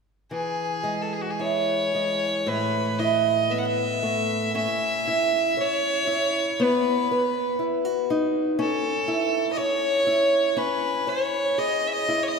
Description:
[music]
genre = celtic folk, Celtic slow air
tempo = 54-62 BPM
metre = 4/4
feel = rubato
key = E major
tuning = A4 = 441 Hz
[part]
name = clear fiddle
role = melody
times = 0.3-12.4 s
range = F#4 to F#5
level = -24 LUFS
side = left 1 dB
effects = none
[part]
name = fingerpicked acoustic archtop guitar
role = accompaniment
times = 0.3-12.4 s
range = A2 to C#5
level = -25 LUFS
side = right 2 dB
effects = none
[sound]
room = wet church reverb, RT60 3.9 s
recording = recorded in a church or concert hall, faint mains hum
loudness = -22 LUFS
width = side -5 dB against mid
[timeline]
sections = 0.3-12.4 A section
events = none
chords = 0.3 E; 2.5 Asus2; 4.5 C#m; 6.6 B; 8.6 A/C#; 10.6 C#m

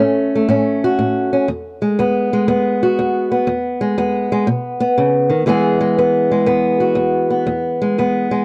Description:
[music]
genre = blues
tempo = 121 BPM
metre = 4/4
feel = swing 67% on 8ths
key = E major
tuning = A4 = 439 Hz
[part]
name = fingerpicked old ladder-braced acoustic guitar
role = solo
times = 0.0-8.4 s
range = E2 to G#4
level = -17 LUFS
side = equal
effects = none
[sound]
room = small room ambience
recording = dry, close 1970s-style studio recording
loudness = -17 LUFS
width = mono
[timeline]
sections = 0.0-5.5 A section; 5.5-8.4 B section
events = none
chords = 0.0 A; 1.5 E; 4.5 B; 5.5 E

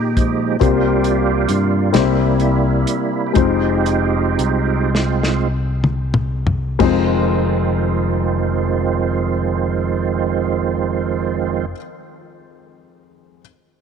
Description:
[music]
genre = slow gospel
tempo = 29-46 BPM (dotted quarters)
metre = 6/8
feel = straight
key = F minor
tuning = A4 = 440 Hz
[part]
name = warm grand piano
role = accompaniment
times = 0.0-13.4 s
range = F2 to C5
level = -20 LUFS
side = left 14 dB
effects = none
[part]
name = bright tonewheel organ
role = sustained chords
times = 0.0-11.7 s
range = Eb3 to G4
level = -20 LUFS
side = right 10 dB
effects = fast rotary speaker, chorus vibrato
[part]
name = modern bright fingered electric bass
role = bass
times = 0.0-11.7 s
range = F1 to Bb2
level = -20 LUFS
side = left 1 dB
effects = none
[part]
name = warm soul drum kit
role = drums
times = 0.2-7.1 s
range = crash cymbal, hi-hat, kick drum, snare drum, toms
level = -21 LUFS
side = left 1 dB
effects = none
[sound]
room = light reverb, small room ambience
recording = 1960s-style stereo with parts hard left and right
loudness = -15 LUFS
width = side -7 dB against mid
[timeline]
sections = 0.0-6.8 A section; 6.8-10.9 B section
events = tonewheel organ solo 0.0-6.8; slowing down 0.6-6.8; drum fill 4.9-6.8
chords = 0.0 Fm7; 0.6 C7sus4; 1.9 C7; 3.4 Fm7

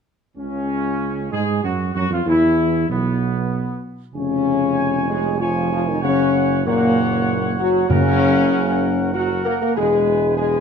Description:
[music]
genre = classical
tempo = 96 BPM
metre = 3/4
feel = straight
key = F# major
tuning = A4 = 439 Hz
[part]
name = dark trumpet section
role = melody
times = 0.4-10.6 s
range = B3 to G#5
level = -25 LUFS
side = right 1 dB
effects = none
[part]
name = dark French horn section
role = sustained chords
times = 0.4-10.6 s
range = A#3 to A#4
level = -20 LUFS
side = left 6 dB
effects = none
[part]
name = mellow trombone section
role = sustained chords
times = 0.4-10.6 s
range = A#2 to A#3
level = -25 LUFS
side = right 6 dB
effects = none
[part]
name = mellow tuba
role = bass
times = 0.4-10.6 s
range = E1 to G#2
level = -23 LUFS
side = right 6 dB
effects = none
[part]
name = timpani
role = percussion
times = 7.9-8.8 s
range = F#2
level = -22 LUFS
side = right 1 dB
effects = none
[sound]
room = moderate recital hall reverb, RT60 1.5 s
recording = none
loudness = -16 LUFS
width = side -6 dB against mid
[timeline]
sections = 0.4-10.6 A section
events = none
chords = 0.4 F#5/C#; 2.3 E5; 4.2 C#/E#; 6.0 F#; 9.8 E

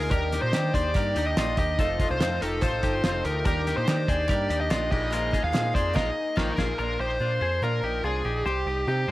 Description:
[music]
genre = jangly indie pop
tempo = 144 BPM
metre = 4/4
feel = straight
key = unclear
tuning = A4 = 441 Hz
[part]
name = dark smooth lead guitar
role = melody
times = 0.0-9.1 s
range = G4 to F5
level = -28 LUFS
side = equal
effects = overdrive
[part]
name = picked twelve-string acoustic guitar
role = accompaniment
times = 0.0-9.1 s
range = F2 to Eb4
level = -36 LUFS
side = right 6 dB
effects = none
[part]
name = warm analog keys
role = accompaniment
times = 0.0-6.8 s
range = Bb3 to A4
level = -35 LUFS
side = left 4 dB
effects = chorus
[part]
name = warm analog pad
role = sustained chords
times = 0.0-6.8 s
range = Eb4 to Eb6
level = -40 LUFS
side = equal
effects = none
[part]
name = twelve-string electric guitar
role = arpeggios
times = 0.0-9.1 s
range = Bb3 to C5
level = -32 LUFS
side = left 4 dB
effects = none
[part]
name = deep dub picked electric bass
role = bass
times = 0.0-9.1 s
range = F1 to Eb3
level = -30 LUFS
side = equal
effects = none
[part]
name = cloth-damped thuddy drum kit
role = drums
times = 0.1-6.7 s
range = crash cymbal, hi-hat, kick drum, snare drum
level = -28 LUFS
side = equal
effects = none
[part]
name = group handclap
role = percussion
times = 0.5-5.6 s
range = none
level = -42 LUFS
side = right 6 dB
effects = none
[sound]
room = moderate spring reverb, RT60 1.1 s, small room ambience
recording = none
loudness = -23 LUFS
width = side -17 dB against mid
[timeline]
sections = 0.0-6.8 A section; 6.8-9.1 B section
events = band accent 6.0-6.8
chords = 0.0 Bb7sus4; 1.8 F7; 3.5 Ebmaj7; 4.9 Bb7sus4; 6.8 Bb; 8.5 Cm

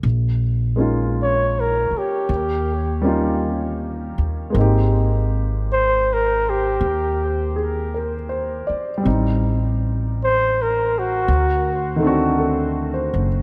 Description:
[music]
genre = jazz ballad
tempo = 53 BPM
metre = 4/4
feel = swing 66% on 8ths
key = unclear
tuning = A4 = 440 Hz
[part]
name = warm concert grand piano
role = accompaniment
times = 0.0-13.4 s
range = Eb3 to D5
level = -25 LUFS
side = equal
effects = none
[part]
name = upright bass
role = bass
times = 0.0-13.4 s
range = F#1 to Eb2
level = -24 LUFS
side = equal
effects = none
[part]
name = warm flugelhorn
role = melody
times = 1.2-12.1 s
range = Gb4 to Db5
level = -23 LUFS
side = equal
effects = diffuse ambient delay
[sound]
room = moderate lush hall reverb, RT60 2.7 s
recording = dreamy mix soaked in reverb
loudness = -20 LUFS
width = mono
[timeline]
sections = 0.0-13.4 A section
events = flugelhorn solo 0.0-13.4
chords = 0.0 Bbm7; 2.3 Eb7; 4.6 Abmaj9; 9.1 Am7b5; 11.3 D7b9

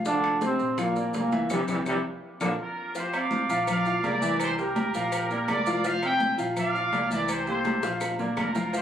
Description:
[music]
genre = latin, salsa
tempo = 166 BPM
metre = 4/4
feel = straight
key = unclear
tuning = A4 = 441 Hz
[part]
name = bright upright piano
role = accompaniment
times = 0.0-8.8 s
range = E3 to F5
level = -30 LUFS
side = equal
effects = none
[part]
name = upright bass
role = bass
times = 0.0-8.8 s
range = F1 to C2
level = -39 LUFS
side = right 1 dB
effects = none
[part]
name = congas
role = percussion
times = 0.0-8.8 s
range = none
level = -33 LUFS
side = left 1 dB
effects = none
[part]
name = warm trombone section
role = melody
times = 0.1-2.5 s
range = Bb2 to D4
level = -27 LUFS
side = right 1 dB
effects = none
[part]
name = bongos and cowbell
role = percussion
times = 0.1-8.8 s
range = none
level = -38 LUFS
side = left 4 dB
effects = none
[part]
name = maracas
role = percussion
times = 0.1-8.8 s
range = none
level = -44 LUFS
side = left 2 dB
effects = none
[part]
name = claves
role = percussion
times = 0.2-8.6 s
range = none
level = -39 LUFS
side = left 2 dB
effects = none
[part]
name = timbales and agogo bells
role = percussion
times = 0.2-8.8 s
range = none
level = -36 LUFS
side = right 3 dB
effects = none
[part]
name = bright trumpet section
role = melody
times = 2.6-8.8 s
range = F4 to G5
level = -28 LUFS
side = right 1 dB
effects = none
[sound]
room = light reverb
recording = recorded on a phone in the room, club reverb, compression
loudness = -24 LUFS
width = side -9 dB against mid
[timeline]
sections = 0.0-3.0 A section; 3.0-8.8 B section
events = drum fill 1.5-3.0, 7.7-8.7; band accent 1.5-3.0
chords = 0.1 F5; 0.8 Bb; 1.5 C; 2.2 Bb; 3.0 Fsus2; 3.7 Bb; 4.4 C7; 5.1 Bb; 5.8 Fsus2; 6.6 Bb; 7.3 C7; 8.0 Bb

